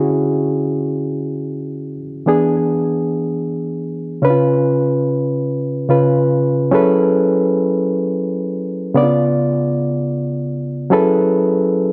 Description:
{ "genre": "disco", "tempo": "free time", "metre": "none", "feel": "none", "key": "F# minor", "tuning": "A4 = 438 Hz", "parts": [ { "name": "barky reed electric piano", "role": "solo", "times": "0.0-11.9 s", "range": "C#3 to D5", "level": "-17 LUFS", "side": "equal", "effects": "overdrive, analog delay" } ], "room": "light reverb, digital ambience", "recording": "none", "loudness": "-17 LUFS", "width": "mono", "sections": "0.0-6.7 A section; 6.7-11.9 B section", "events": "none", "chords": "0.0 Dmaj9#11; 2.3 E7; 4.2 C#7; 6.7 F#m11; 9.0 C#7b9; 10.9 F#m11" }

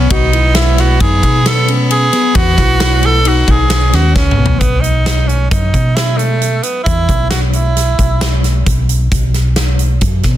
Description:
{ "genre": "progressive instrumental, band music in an uneven meter", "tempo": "133 BPM", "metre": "5/4", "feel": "straight", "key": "B mixolydian", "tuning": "A4 = 444 Hz", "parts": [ { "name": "clear tenor saxophone", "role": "melody", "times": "0.0-8.4 s", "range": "A3 to A4", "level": "-16 LUFS", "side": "right 3 dB", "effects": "plate reverb, ping-pong delay" }, { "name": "clear fiddle", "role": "second line", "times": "0.0-4.3 s", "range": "B3", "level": "-24 LUFS", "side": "right 3 dB", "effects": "plate reverb" }, { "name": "tine electric piano", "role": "arpeggios", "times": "0.0-4.6 s", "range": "B3 to F#4", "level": "-20 LUFS", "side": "moving between left 7 dB and left 1 dB", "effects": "auto-pan, plate reverb" }, { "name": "hollow-body short-scale fingered electric bass", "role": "bass", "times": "0.0-10.4 s", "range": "B1 to B2", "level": "-13 LUFS", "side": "equal", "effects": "none" }, { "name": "big rock drum kit", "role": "drums", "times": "0.1-10.3 s", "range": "hi-hat, kick drum, ride cymbal, snare drum, toms", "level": "-15 LUFS", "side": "equal", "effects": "none" } ], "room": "light reverb", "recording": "dense, heavily limited modern master", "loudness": "-10 LUFS", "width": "side -12 dB against mid", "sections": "0.0-4.6 A section; 4.6-10.4 B section", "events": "tenor saxophone solo 0.0-4.6; drum fill 4.2-4.6", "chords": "0.0 Bsus4" }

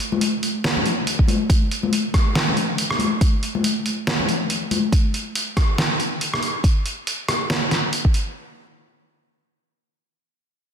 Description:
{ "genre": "deep dubstep", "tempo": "140 BPM", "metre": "4/4", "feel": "swing 58% on 16ths, half-time", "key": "none", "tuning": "none", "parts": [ { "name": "trip hop sampler-style drum kit", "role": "drums", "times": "0.0-8.2 s", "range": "hi-hat, rim click, snare drum", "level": "-22 LUFS", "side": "right 1 dB", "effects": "none" }, { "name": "congas", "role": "percussion", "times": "0.1-4.8 s", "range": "none", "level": "-24 LUFS", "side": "left 4 dB", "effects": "dub echo" }, { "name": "electronic kick drum", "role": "drums", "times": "1.2-8.1 s", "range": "none", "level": "-18 LUFS", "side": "equal", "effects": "none" } ], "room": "light reverb", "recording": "dense, heavily limited modern master", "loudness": "-18 LUFS", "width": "side -8 dB against mid", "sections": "0.0-8.4 A section", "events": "none", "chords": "none" }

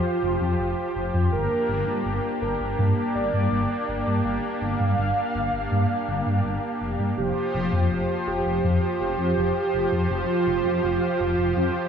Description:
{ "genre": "synthwave", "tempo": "82 BPM", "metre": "4/4", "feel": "straight", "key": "unclear", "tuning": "A4 = 444 Hz", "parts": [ { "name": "wide unison lead", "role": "melody", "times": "0.0-11.9 s", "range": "F4 to F5", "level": "-27 LUFS", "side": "right 2 dB", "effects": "lush chorus, tape echo" }, { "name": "brassy analog pad", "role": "sustained chords", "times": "0.0-11.9 s", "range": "F3 to C5", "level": "-26 LUFS", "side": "equal", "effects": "chorus" }, { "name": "dark detuned saw bass", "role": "bass", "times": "0.2-11.7 s", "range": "F1 to G2", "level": "-25 LUFS", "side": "left 1 dB", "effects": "none" } ], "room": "wet huge ambient reverb, RT60 7.4 s", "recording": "dreamy mix soaked in reverb, small room reverb", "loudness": "-22 LUFS", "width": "side -7 dB against mid", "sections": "0.0-11.9 A section", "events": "none", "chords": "0.0 Fsus2; 1.3 Gm; 7.2 Fsus2" }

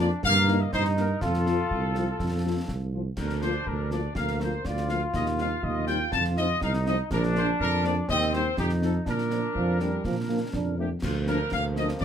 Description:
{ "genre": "military-style march for wind band", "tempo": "122 BPM", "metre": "2/4", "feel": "straight", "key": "Bb major", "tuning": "A4 = 440 Hz", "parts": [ { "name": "mellow trumpet section", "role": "melody", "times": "0.0-12.0 s", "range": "F4 to A5", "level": "-30 LUFS", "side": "left 2 dB", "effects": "none" }, { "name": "dark French horn section", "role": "accompaniment", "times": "0.0-11.9 s", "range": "F3 to F4", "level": "-32 LUFS", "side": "left 4 dB", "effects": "none" }, { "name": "clear trombone section", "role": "sustained chords", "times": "0.0-12.0 s", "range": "F3 to F4", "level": "-32 LUFS", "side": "equal", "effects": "none" }, { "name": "mellow tuba", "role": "bass", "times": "0.0-12.0 s", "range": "Bb1 to Bb2", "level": "-28 LUFS", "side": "right 2 dB", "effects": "none" }, { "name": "concert snare drum, concert bass drum and clash cymbals", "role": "drums", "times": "0.2-12.0 s", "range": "none", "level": "-36 LUFS", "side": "left 1 dB", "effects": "none" }, { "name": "warm euphonium", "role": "second line", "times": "9.6-10.9 s", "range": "F3 to D4", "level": "-30 LUFS", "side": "right 3 dB", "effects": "none" } ], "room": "moderate studio reverb, RT60 0.6 s", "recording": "none", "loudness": "-24 LUFS", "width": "side -8 dB against mid", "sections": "0.0-11.0 A section; 11.0-12.0 B section", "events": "none", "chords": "0.2 Eb/G; 1.2 F; 3.2 Bb/D; 5.1 Cm/Eb; 6.1 F5; 7.1 Bb; 8.1 Cm/Eb; 8.6 F7; 9.1 Bb; 11.0 Bb/D" }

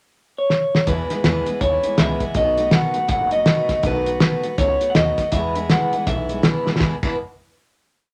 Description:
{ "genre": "rockabilly", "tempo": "162 BPM", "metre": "4/4", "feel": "swing 61% on 8ths", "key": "E major", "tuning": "A4 = 440 Hz", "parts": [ { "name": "electric guitar through a small old amp", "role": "melody", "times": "0.4-6.4 s", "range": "B4 to F#5", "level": "-23 LUFS", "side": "equal", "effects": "none" }, { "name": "cloth-damped thuddy drum kit", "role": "drums", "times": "0.5-7.1 s", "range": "crash cymbal, hi-hat, kick drum, snare drum", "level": "-22 LUFS", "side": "equal", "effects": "none" }, { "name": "picked steel-string acoustic guitar", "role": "accompaniment", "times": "0.9-7.2 s", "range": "E2 to F#4", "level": "-28 LUFS", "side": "equal", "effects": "none" }, { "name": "upright bass", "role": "bass", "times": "0.9-7.2 s", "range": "F#1 to E2", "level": "-30 LUFS", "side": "equal", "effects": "none" } ], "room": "wet small room reverb, RT60 0.5 s", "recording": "none", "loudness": "-19 LUFS", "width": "mono", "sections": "0.0-0.9 pickup bar; 0.9-6.8 A section; 6.8-8.1 final chord", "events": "drum fill 0.5-0.9, 6.6", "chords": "0.0 N.C.; 0.9 E; 2.4 B7; 5.3 E" }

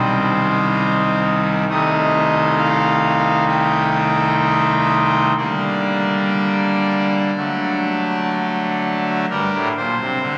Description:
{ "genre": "classical, chorale-style piece for pipe organ", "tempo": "61-68 BPM", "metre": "4/4", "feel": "rubato", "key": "G minor", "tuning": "A4 = 440 Hz", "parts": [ { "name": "pipe organ, trumpet", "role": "solo", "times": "0.0-10.4 s", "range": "C2 to G5", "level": "-18 LUFS", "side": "equal", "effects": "none" } ], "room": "wet cathedral reverb, RT60 4.6 s", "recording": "recorded on a phone in the room, club reverb, compression", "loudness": "-18 LUFS", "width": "mono", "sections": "0.0-9.3 A section; 9.3-10.4 B section", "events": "none", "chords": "0.0 Cm; 1.7 Am7b5/C; 5.4 Gm/D; 7.3 D; 9.3 Gm" }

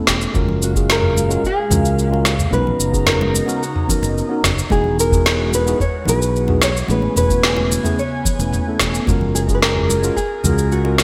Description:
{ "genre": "sunset chillout", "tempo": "110 BPM", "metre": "4/4", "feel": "straight", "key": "F# major", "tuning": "A4 = 437 Hz", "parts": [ { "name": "mellow tine electric piano", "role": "accompaniment", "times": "0.0-11.0 s", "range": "G#3 to B4", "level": "-25 LUFS", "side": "equal", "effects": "vintage 12-bit sampler grit, delay" }, { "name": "fingered electric bass", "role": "bass", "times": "0.1-11.0 s", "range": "E1 to C#2", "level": "-23 LUFS", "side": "equal", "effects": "none" }, { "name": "electronic kick drum", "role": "drums", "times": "0.1-10.3 s", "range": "none", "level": "-24 LUFS", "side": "equal", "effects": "overdrive" }, { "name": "smooth R&B drum kit", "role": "drums", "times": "0.1-11.0 s", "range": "shaker, snare drum, toms", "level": "-22 LUFS", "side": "equal", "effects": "gated reverb" }, { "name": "airy breathy pad", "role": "sustained chords", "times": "0.7-11.0 s", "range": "A#2 to A#5", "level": "-30 LUFS", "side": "equal", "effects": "chorus, phaser" }, { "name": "congas", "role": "percussion", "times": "0.4-11.0 s", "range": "none", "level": "-30 LUFS", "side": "equal", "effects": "none" }, { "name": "nylon-string guitar", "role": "melody", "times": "0.6-11.0 s", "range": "F#4 to C#5", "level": "-24 LUFS", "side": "equal", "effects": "delay" } ], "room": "light reverb, digital ambience", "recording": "bright 1980s-style digital production", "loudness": "-17 LUFS", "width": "mono", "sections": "0.0-11.0 A section", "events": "none", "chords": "0.3 F#maj9; 2.5 Bmaj9; 4.7 Emaj9; 6.9 Amaj9; 9.1 F#maj9" }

